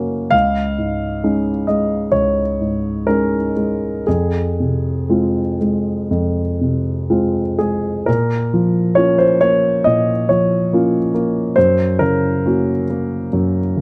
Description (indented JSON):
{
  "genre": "neoclassical minimalist piano",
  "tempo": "57-70 BPM",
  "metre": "4/4",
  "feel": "rubato",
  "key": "Bb minor",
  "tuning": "A4 = 440 Hz",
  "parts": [
    { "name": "warm concert grand piano", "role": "solo", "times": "0.0-13.8 s", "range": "Db2 to F5", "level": "-17 LUFS", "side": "equal", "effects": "none" }
  ],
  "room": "light reverb",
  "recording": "none",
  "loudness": "-17 LUFS",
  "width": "mono",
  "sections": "0.0-8.1 A section; 8.1-13.8 A section",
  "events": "none",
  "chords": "0.3 Dbsus2; 4.1 Fm; 8.1 Bbm; 11.6 Gb"
}